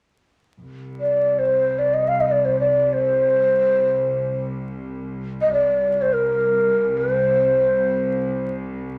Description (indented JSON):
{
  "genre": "Turkish makam ensemble",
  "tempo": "free time",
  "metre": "none",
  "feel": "none",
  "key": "unclear",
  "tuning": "A4 = 440 Hz",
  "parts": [
    { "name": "clear studio cello section", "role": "drone", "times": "0.6-9.0 s", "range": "C2", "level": "-31 LUFS", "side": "equal", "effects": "none" },
    { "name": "breathy mellow ney", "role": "melody", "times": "1.0-8.5 s", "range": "Bb4 to F5", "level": "-20 LUFS", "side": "equal", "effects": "none" }
  ],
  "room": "wet studio reverb, RT60 0.9 s",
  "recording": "vinyl crackle",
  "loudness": "-20 LUFS",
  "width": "mono",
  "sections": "0.6-9.0 A section",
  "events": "none",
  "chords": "none",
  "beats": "free time"
}